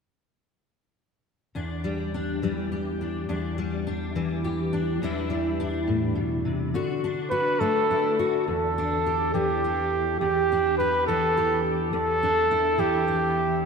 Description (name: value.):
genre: folk.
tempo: 69 BPM (dotted quarters).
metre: 6/8.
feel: straight.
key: E minor.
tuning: A4 = 440 Hz.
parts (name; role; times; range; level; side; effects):
fingerpicked steel-string acoustic guitar; accompaniment; 1.5-13.7 s; E2 to G4; -26 LUFS; left 2 dB; ensemble chorus.
warm trumpet; melody; 7.3-13.7 s; G4 to B4; -22 LUFS; right 2 dB; diffuse ambient delay.
room: wet lush hall reverb, RT60 2.7 s.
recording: dreamy mix soaked in reverb.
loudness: -23 LUFS.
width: side -5 dB against mid.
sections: 1.5-8.5 A section; 8.5-13.7 B section.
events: none.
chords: 1.5 Em7; 5.0 Cadd9/E; 6.7 D; 8.5 Em7.